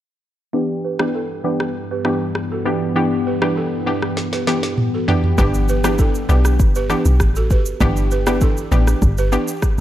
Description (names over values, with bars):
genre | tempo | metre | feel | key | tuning
afrobeats | 99 BPM | 4/4 | straight | G major | A4 = 443 Hz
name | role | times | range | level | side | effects
analog pluck | accompaniment | 0.5-9.5 s | E3 to G4 | -22 LUFS | left 1 dB | chorus, low-pass filter
deep dark ambient pad | sustained chords | 1.4-5.4 s | G2 to B3 | -26 LUFS | left 2 dB | chorus, built-in reverb, low-pass filter
balafon | riff | 0.5-9.4 s | E4 to B4 | -25 LUFS | right 6 dB | low-pass filter, digital delay
afro-pop drum kit | drums | 1.0-9.8 s | kick drum, rim click, shaker, snare drum, toms | -19 LUFS | equal | none
deep log drum bass | bass | 5.4-9.4 s | G1 to B1 | -17 LUFS | equal | none
room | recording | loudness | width
digital ambience | dark, warm production | -16 LUFS | side -13 dB against mid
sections
0.5-5.4 A section; 5.4-9.8 B section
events
filter sweep 0.5-5.4; drum fill 4.2-5.4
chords
0.5 G6